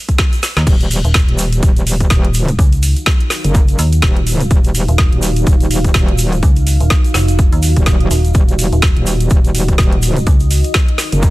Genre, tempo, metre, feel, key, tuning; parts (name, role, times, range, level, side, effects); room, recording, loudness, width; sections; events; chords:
bass house; 125 BPM; 4/4; swing 57% on 16ths; Eb minor; A4 = 440 Hz
electronic kick drum; drums; 0.1-11.3 s; -12 LUFS; equal; overdrive
garage drum kit; drums; 0.1-11.3 s; crash cymbal, hi-hat, snare drum; -19 LUFS; equal
egg shaker; percussion; 0.1-11.3 s; -26 LUFS; right 2 dB
metallic FM bass; bass; 0.6-10.6 s; Eb1 to Eb2; -13 LUFS; equal; tube saturation, sidechain pumping
deep dark ambient pad; sustained chords; 2.8-11.3 s; Eb4 to F5; -24 LUFS; right 2 dB; chorus, built-in reverb, sidechain pumping
metallic wobble bass; bass; 0.7-11.3 s; Eb1 to Gb1; -15 LUFS; equal; chorus, sidechain pumping
little or no reverb; -10 LUFS; side -19 dB against mid
0.0-11.3 A section
drum fill 0.4
0.0 Ebmadd9